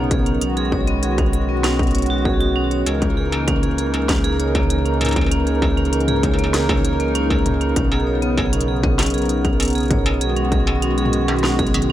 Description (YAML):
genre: IDM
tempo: 98 BPM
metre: 4/4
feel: straight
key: C# dorian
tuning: A4 = 442 Hz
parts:
  - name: hollow soft pad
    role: sustained chords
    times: 0.0-11.9 s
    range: C#3 to A#4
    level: -23 LUFS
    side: equal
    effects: chorus, sidechain pumping
  - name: vibraphone with hard mallets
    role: arpeggios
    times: 0.0-11.9 s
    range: A#3 to C#5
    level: -22 LUFS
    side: right 2 dB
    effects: ping-pong delay
  - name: dark detuned saw bass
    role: bass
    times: 0.0-11.9 s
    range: B1 to C#2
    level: -22 LUFS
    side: equal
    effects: none
  - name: electronic kick drum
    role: drums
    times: 0.1-11.7 s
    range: none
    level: -21 LUFS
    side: equal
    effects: distortion
  - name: industrial drum kit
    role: drums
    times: 0.1-11.9 s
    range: hi-hat, snare drum, struck metal, toms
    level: -26 LUFS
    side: equal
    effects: none
room: light reverb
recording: rough home demo mix, faint mains hum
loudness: -16 LUFS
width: side -13 dB against mid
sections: 0.0-11.9 A section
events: none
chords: 0.4 G#m7/B; 2.9 C#m69; 7.8 Bmaj9; 10.2 G#m7/B